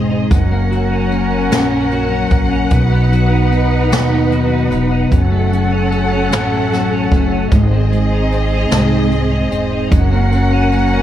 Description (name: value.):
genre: six-eight pop ballad.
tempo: 50 BPM (dotted quarters).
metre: 6/8.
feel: straight.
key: unclear.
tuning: A4 = 440 Hz.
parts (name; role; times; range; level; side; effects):
twelve-string electric guitar; accompaniment; 0.0-11.0 s; F#2 to D#4; -17 LUFS; left 1 dB; lush chorus.
warm studio string section; sustained chords; 0.0-11.0 s; B#3 to F#5; -19 LUFS; equal; none.
upright bass; bass; 0.0-11.0 s; E1 to D#2; -17 LUFS; equal; none.
jazz brush drum kit; drums; 0.3-10.9 s; hi-hat, kick drum, snare drum; -16 LUFS; equal; none.
room: moderate plate reverb, RT60 2.2 s.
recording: dreamy mix soaked in reverb.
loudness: -12 LUFS.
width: side -11 dB against mid.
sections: 0.0-11.0 A section.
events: none.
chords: 0.3 F#; 2.7 B; 5.1 F#m; 7.5 G#; 9.9 F#.